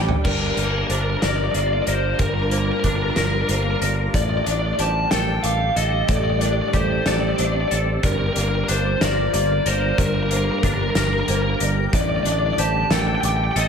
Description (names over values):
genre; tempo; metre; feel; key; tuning
post-rock; 62 BPM (dotted quarters); 6/8; straight; G minor; A4 = 440 Hz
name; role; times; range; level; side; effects
shimmering ambient pad; sustained chords; 0.0-13.7 s; D3 to Bb4; -29 LUFS; right 2 dB; chorus, built-in reverb
felt-muted upright piano; arpeggios; 0.0-13.7 s; A4 to D6; -33 LUFS; right 4 dB; analog delay
twangy electric guitar; arpeggios; 0.0-13.7 s; G2 to Bb4; -27 LUFS; left 2 dB; ensemble chorus, analog delay
overdriven picked electric bass; bass; 0.0-13.7 s; G1 to A1; -23 LUFS; equal; none
loose indie drum kit; drums; 0.1-13.7 s; crash cymbal, hi-hat, kick drum, snare drum, toms; -25 LUFS; equal; none
biting lead guitar; melody; 0.2-13.7 s; Bb4 to A5; -23 LUFS; left 1 dB; overdrive, analog delay
room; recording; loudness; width
moderate lush hall reverb, RT60 2.2 s; dreamy mix soaked in reverb; -18 LUFS; side -6 dB against mid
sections
0.3-13.7 A section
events
drum fill 0.0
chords
0.3 Gm7; 4.1 Dsus4/A; 8.0 Gm7; 11.9 Dsus4/A